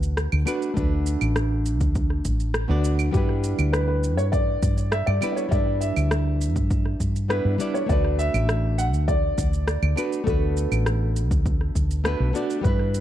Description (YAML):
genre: sunset chillout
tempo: 101 BPM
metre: 4/4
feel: straight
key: D major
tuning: A4 = 440 Hz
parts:
  - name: flamenco guitar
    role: accompaniment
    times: 0.0-13.0 s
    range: G3 to D5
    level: -29 LUFS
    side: right 1 dB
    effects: auto-pan, digital delay
  - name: woody fretless electric bass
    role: bass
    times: 0.0-13.0 s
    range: A1 to G2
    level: -23 LUFS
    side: equal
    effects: none
  - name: electronic shaker, rim click and claves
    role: drums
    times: 0.0-13.0 s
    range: none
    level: -31 LUFS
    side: right 1 dB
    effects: overdrive, small room ambience
  - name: electronic kick drum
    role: drums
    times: 0.8-12.8 s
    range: none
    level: -25 LUFS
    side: equal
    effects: overdrive, small room ambience
  - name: dark grand piano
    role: melody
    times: 3.1-13.0 s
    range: G4 to F#5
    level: -28 LUFS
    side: left 1 dB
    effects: digital delay
room: light reverb, small room ambience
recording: dark, warm production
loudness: -20 LUFS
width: side -12 dB against mid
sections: 0.0-13.0 A section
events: none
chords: 0.0 D6; 3.1 G6; 7.9 D6